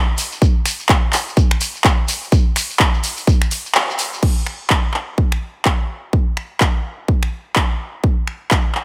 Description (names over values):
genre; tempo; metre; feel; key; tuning
house; 126 BPM; 4/4; swing 60% on 16ths; none; none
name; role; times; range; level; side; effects
big-room dance drum kit; drums; 0.2-8.8 s; crash cymbal, finger snaps, handclaps, hi-hat; -22 LUFS; equal; overdrive, small room ambience
shekere; percussion; 0.2-4.2 s; none; -28 LUFS; equal; none
electronic kick drum; drums; 0.4-8.6 s; none; -18 LUFS; equal; overdrive, small room ambience
room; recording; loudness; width
light reverb; none; -18 LUFS; mono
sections
0.0-4.2 A section; 4.2-8.8 B section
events
drop 0.0-4.2; kick drops out 3.8-4.2; band accent 3.8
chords
none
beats
| 0.42 0.89 1.37 1.85 | 2.32 2.80 3.27 3.75 | 4.23 4.70 5.18 5.66 | 6.13 6.61 7.08 7.56 | 8.04 8.51